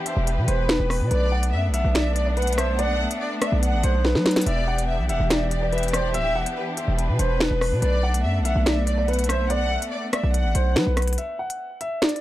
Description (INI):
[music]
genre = hip hop, drill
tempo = 143 BPM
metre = 4/4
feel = half-time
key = unclear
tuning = A4 = 442 Hz
[part]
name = dark baby grand piano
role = melody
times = 0.0-12.2 s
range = B4 to F#5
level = -27 LUFS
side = right 1 dB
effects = low-pass filter
[part]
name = warm studio violin section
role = second line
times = 0.0-10.7 s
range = B4 to F#5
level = -30 LUFS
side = left 2 dB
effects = tape echo
[part]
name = warm studio string section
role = sustained chords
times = 0.0-11.1 s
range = E3 to G4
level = -30 LUFS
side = left 1 dB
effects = none
[part]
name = drill drum kit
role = drums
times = 0.1-12.2 s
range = finger snaps, hi-hat, rim click, snare drum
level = -24 LUFS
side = equal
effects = none
[part]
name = distorted 808-style bass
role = bass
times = 0.2-11.2 s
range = D1 to F#3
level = -22 LUFS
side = equal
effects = distortion
[sound]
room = small room ambience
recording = dark, warm production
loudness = -20 LUFS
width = side -15 dB against mid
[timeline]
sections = 0.0-11.2 A section; 11.2-12.2 B section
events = drum fill 4.0-4.5; break 11.2-12.2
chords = 0.0 Em7; 1.1 Bm7; 4.5 Em7; 7.8 Bm7; 11.2 N.C.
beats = 0.27 0.69 | 1.11 1.53 1.95 2.37 | 2.79 3.21 3.63 4.05 | 4.47 4.89 5.31 5.72 | 6.14 6.56 6.98 7.40 | 7.82 8.24 8.66 9.08 | 9.50 9.92 10.34 10.76 | 11.18 11.60 12.02